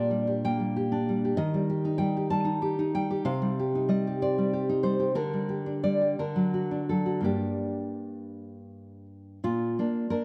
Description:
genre	romantic piece for solo classical guitar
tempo	53-66 BPM (dotted quarters)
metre	6/8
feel	rubato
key	G minor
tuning	A4 = 440 Hz
part	nylon-string guitar	solo	0.0-10.2 s	G2 to A5	-28 LUFS	equal	none
room	moderate concert hall reverb, RT60 1.7 s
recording	none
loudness	-28 LUFS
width	mono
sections	0.0-9.5 A section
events	none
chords	0.0 Gm/Bb; 1.4 Eb; 3.2 Cm; 5.2 Gm/D; 6.2 D; 7.3 Gm; 9.5 Bb

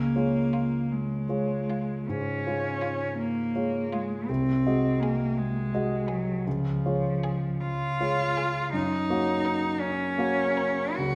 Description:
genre	classical, slow romantic movement for piano trio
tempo	50-56 BPM (dotted quarters)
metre	12/8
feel	rubato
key	Db major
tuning	A4 = 441 Hz
part	rich cello	second line	0.0-11.2 s	F3 to Gb4	-30 LUFS	equal	none
part	warm concert grand piano	accompaniment	0.0-11.2 s	C2 to Eb5	-31 LUFS	equal	none
part	rich violin	melody	0.5-10.9 s	F4 to Bb4	-43 LUFS	equal	none
room	wet recital hall reverb, RT60 1.2 s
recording	faint mains hum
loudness	-27 LUFS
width	mono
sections	0.0-11.2 A section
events	none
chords	0.0 Db; 4.3 Ab7/C; 6.5 Db; 8.7 Gb

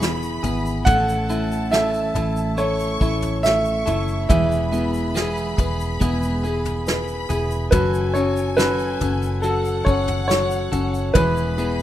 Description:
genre	pop ballad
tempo	70 BPM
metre	4/4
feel	straight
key	E major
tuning	A4 = 440 Hz
part	warm studio violin section	second line	0.0-11.8 s	F#5 to C#6	-32 LUFS	left 2 dB	none
part	felt-muted upright piano	accompaniment	0.0-11.8 s	E3 to B4	-26 LUFS	left 3 dB	none
part	clean electric guitar	arpeggios	0.0-11.8 s	A2 to A4	-28 LUFS	right 2 dB	ping-pong delay
part	vintage muted fingered electric bass	bass	0.0-11.8 s	E1 to A1	-25 LUFS	equal	none
part	soft brush drum kit	drums	0.0-11.3 s	kick drum, snare drum, toms	-22 LUFS	equal	none
part	tube shaker	percussion	0.0-11.8 s	none	-44 LUFS	left 4 dB	none
part	warm concert grand piano	melody	0.8-11.8 s	A4 to F#5	-22 LUFS	right 1 dB	none
room	small room ambience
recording	rough home demo mix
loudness	-18 LUFS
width	side -12 dB against mid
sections	0.0-11.8 A section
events	none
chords	0.0 E; 0.9 A; 4.3 E; 7.7 F#m; 11.2 E

